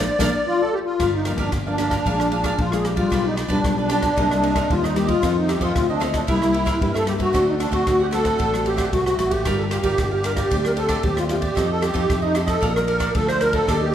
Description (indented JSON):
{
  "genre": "samba and choro",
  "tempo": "114 BPM",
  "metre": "4/4",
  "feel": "straight",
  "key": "G minor",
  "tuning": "A4 = 441 Hz",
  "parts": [
    { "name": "musette accordion", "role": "melody", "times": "0.0-13.9 s", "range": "C4 to D5", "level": "-21 LUFS", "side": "equal", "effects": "none" },
    { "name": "nylon-string guitar", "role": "accompaniment", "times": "0.0-13.9 s", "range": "F2 to Bb4", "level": "-27 LUFS", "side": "left 3 dB", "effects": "none" },
    { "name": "fingered electric bass", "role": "bass", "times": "0.0-13.9 s", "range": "G1 to G2", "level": "-26 LUFS", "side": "equal", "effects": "none" },
    { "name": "cavaquinho", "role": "accompaniment", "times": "0.2-13.9 s", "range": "D4 to Bb5", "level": "-30 LUFS", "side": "right 2 dB", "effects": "none" },
    { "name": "open jazz drum kit", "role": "drums", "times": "0.2-13.8 s", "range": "kick drum, ride cymbal, rim click, snare drum", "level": "-26 LUFS", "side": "equal", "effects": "none" }
  ],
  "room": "moderate recital hall reverb, RT60 1.5 s",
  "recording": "recorded in a church or concert hall",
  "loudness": "-18 LUFS",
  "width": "side -10 dB against mid",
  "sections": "1.0-13.9 A section",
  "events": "drum fill 0.0-1.0; band accent 0.0-1.0",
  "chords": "0.0 Bbmaj7; 1.0 Gm7; 2.1 Bb7; 3.1 G7/B; 4.2 Cm7; 5.2 F7; 6.3 C7; 7.3 D7; 9.5 Gm7; 10.5 D7sus4; 11.6 F7; 12.6 Bbmaj7",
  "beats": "0.47 | 1.00 1.53 2.06 2.58 | 3.12 3.64 4.17 4.70 | 5.23 5.76 6.29 6.82 | 7.34 7.87 8.40 8.93 | 9.46 9.99 10.51 11.04 | 11.57 12.10 12.63 13.15 | 13.68"
}